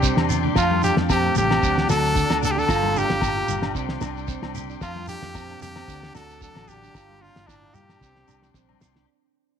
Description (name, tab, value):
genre	highlife guitar band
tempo	113 BPM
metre	4/4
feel	swing 54% on 16ths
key	unclear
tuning	A4 = 439 Hz
part	brilliant trumpet	melody	0.0-8.5 s	D4 to A4	-24 LUFS	equal	none
part	electric guitar at the edge of break-up	accompaniment	0.0-9.1 s	F2 to G4	-32 LUFS	left 11 dB	none
part	overdriven combo organ	sustained chords	0.0-9.1 s	D5 to C6	-34 LUFS	left 10 dB	none
part	handpan	arpeggios	0.0-9.1 s	A3 to A4	-29 LUFS	right 13 dB	none
part	fingered electric bass	bass	0.0-9.0 s	G1 to G2	-28 LUFS	equal	none
part	cloth-damped thuddy drum kit	drums	0.0-9.1 s	kick drum, snare drum	-25 LUFS	equal	none
part	shekere	percussion	0.0-9.0 s	none	-32 LUFS	right 8 dB	none
part	agogo bells	percussion	0.2-8.8 s	none	-32 LUFS	left 14 dB	none
part	congas	percussion	0.2-9.0 s	none	-32 LUFS	left 11 dB	none
room	light reverb, small room ambience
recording	1960s-style stereo with parts hard left and right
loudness	-19 LUFS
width	side -8 dB against mid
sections	0.0-9.1 A section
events	fade-out 0.0-9.1; drum fill 0.2-0.6, 8.0-9.1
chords	0.0 Csus2; 0.6 Fadd9; 1.6 D; 2.7 Gm7; 3.8 Csus2; 4.8 Fadd9; 5.9 D; 6.9 Gm7; 8.0 Csus2